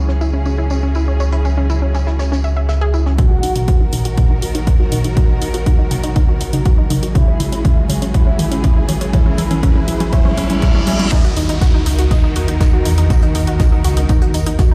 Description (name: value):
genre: melodic techno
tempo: 121 BPM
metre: 4/4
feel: straight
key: Eb phrygian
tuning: A4 = 441 Hz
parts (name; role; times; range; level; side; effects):
- clear studio string section; sustained chords; 0.0-14.7 s; Db2 to Bb4; -28 LUFS; equal; sidechain pumping
- analog pluck; arpeggios; 0.0-14.7 s; Db4 to Fb5; -26 LUFS; equal; chorus, sidechain pumping, digital delay
- dark detuned saw bass; bass; 0.0-3.2, 11.4-14.6 s; Db2 to Fb2; -18 LUFS; equal; sidechain pumping
- bowed-like drone; drone; 0.0-14.7 s; Eb3 to Gb4; -32 LUFS; equal; none
- damped 70s drum kit; drums; 0.1-3.2, 11.1-14.7 s; hi-hat, snare drum, tambourine; -38 LUFS; equal; high-pass filter on hats, low-pass filter on hats, high-pass filter on snare, low-pass filter on snare, high-pass filter on perc, low-pass filter on perc, high-pass filter on room, low-pass filter on room
- expressive portamento lead; melody; 3.2-3.8, 7.2-11.1 s; Fb4 to Gb4; -29 LUFS; equal; ensemble chorus, sidechain pumping, digital delay
- electronic kick drum; drums; 3.2-14.7 s; none; -16 LUFS; equal; none
- house drum kit; drums; 3.2-14.7 s; hi-hat, toms; -24 LUFS; equal; sidechain pumping on hats, sidechain pumping on toms
- riser, reverse cymbal and downlifter; sound effects; 6.3-14.7 s; none; -31 LUFS; equal; none
room: studio ambience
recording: played on a big sound system in a bare room, large studio reverb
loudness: -15 LUFS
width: mono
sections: 0.0-3.2 A section; 3.2-11.1 B section; 11.1-14.7 C section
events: filter sweep on synth arpeggio sound 0.0-3.2, 3.2-11.1; build-up 3.2-11.1; drum fill 3.2-11.1; riser 6.3-11.1; reverse cymbal 10.1-11.1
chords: 0.0 Dbm; 3.2 Ebm; 7.2 Dbm; 11.1 Ebm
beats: 0.21 0.71 | 1.20 1.70 2.19 2.69 | 3.19 3.68 4.18 4.67 | 5.17 5.66 6.16 6.66 | 7.15 7.65 8.14 8.64 | 9.14 9.63 10.13 10.62 | 11.12 11.62 12.11 12.61 | 13.10 13.60 14.09 14.59